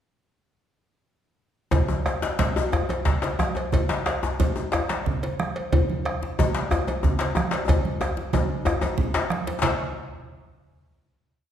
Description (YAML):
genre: west african traditional, West African drum ensemble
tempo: 122 BPM (dotted quarters)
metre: 12/8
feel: straight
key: none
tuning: none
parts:
  - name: bombo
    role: percussion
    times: 1.7-9.8 s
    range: none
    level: -27 LUFS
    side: right 1 dB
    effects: none
  - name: congas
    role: percussion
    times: 1.7-9.8 s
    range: none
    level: -29 LUFS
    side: right 5 dB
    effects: none
  - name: cowbell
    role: percussion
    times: 1.7-9.8 s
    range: none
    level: -33 LUFS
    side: equal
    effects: none
  - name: djembe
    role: percussion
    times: 1.7-9.8 s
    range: none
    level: -29 LUFS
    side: left 2 dB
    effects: none
  - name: djembe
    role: percussion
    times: 1.7-9.8 s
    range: none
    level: -26 LUFS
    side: left 3 dB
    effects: none
room: wet recital hall reverb, RT60 1.4 s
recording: recorded in a church or concert hall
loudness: -22 LUFS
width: side -10 dB against mid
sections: 1.7-9.6 A section; 9.6-11.5 final hit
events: speeding up 1.7-11.5; drum fill 7.7-9.6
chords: none